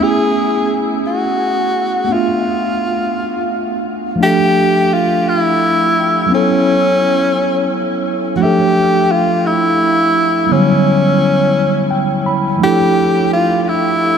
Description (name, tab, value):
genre	R&B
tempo	57 BPM (dotted quarters)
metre	6/8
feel	straight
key	unclear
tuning	A4 = 439 Hz
part	breathy tenor saxophone	melody	0.0-14.2 s	C#4 to G#4	-14 LUFS	left 1 dB	none
part	mellow tine electric piano	accompaniment	0.0-14.2 s	D3 to B5	-16 LUFS	right 1 dB	medium stereo tremolo
room	wet huge ambient reverb, RT60 8.9 s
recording	dreamy mix soaked in reverb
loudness	-12 LUFS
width	side -7 dB against mid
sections	0.0-4.2 A section; 4.2-14.2 B section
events	tine electric piano fill 11.6-12.6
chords	0.0 Amaj9; 2.1 Dm6; 4.2 Dmadd9; 6.3 A69; 8.4 Dmadd9; 10.5 Em7; 12.6 Dmadd9